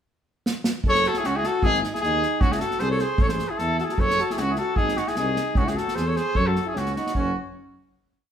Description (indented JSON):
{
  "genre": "balkan folk, Balkan brass band",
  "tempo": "152 BPM",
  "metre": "2/4",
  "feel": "swing 54% on 16ths",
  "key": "F# dorian sharp4",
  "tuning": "A4 = 440 Hz",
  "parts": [
    { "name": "unplugged drum kit", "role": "percussion", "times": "0.5-7.3 s", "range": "kick drum, snare drum", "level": "-26 LUFS", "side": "right 1 dB", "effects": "none" },
    { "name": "mellow tuba", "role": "bass", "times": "0.8-7.3 s", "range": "F#1 to F#2", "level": "-28 LUFS", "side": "left 1 dB", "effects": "none" },
    { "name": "clear trumpet", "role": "melody", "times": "0.9-7.4 s", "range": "F#4 to C#5", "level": "-24 LUFS", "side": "left 2 dB", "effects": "none" },
    { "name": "clear alto saxophone", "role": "second line", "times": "0.9-7.3 s", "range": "C#4 to A4", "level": "-28 LUFS", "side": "right 3 dB", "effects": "none" }
  ],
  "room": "wet studio reverb, RT60 1.0 s",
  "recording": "band playing live in one room",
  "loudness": "-21 LUFS",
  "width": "side -9 dB against mid",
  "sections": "0.1-0.8 pickup bar; 0.8-7.2 A section; 7.2-8.0 final chord",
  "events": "drum fill 0.4-0.8",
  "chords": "0.1 N.C.; 0.8 F#5; 1.6 G#5; 2.4 C#maj7(no3); 3.2 A5; 4.0 F#5; 4.8 G#; 5.6 C#m; 6.4 F#5",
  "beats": "| 0.05 0.44 | 0.84 1.23 | 1.62 2.01 | 2.40 2.80 | 3.19 3.58 | 3.98 4.37 | 4.76 5.16 | 5.56 5.96 | 6.35 6.75 | 7.15"
}